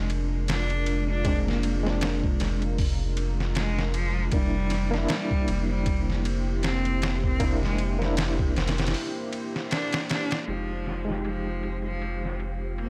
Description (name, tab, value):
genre	trip hop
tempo	78 BPM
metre	4/4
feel	swing 57% on 16ths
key	F dorian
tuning	A4 = 440 Hz
part	clear cello	melody	0.0-12.9 s	F3 to D4	-35 LUFS	equal	tape echo
part	barky reed electric piano	accompaniment	0.0-12.9 s	Ab3 to G4	-36 LUFS	equal	overdrive, fast tremolo, vintage 12-bit sampler grit, low-pass filter, tape echo
part	dark analog pad	sustained chords	0.0-12.9 s	Ab3 to F5	-38 LUFS	equal	chorus, vintage 12-bit sampler grit
part	round analog bass	bass	0.0-12.9 s	F1	-31 LUFS	equal	none
part	trip hop sampler-style drum kit	drums	0.1-12.9 s	hi-hat, kick drum, ride cymbal, snare drum	-32 LUFS	equal	low-pass filter on kick, low-pass filter on cymbals, low-pass filter on snare, low-pass filter on hats
part	wind-like tuned noise texture	texture	11.7-12.9 s	F3 to G4	-45 LUFS	equal	none
room	digital ambience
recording	none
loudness	-27 LUFS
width	mono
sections	0.0-10.5 A section; 10.5-12.9 B section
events	break 8.9-10.5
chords	0.0 Bb7/F; 4.3 C7/F; 10.5 Fm7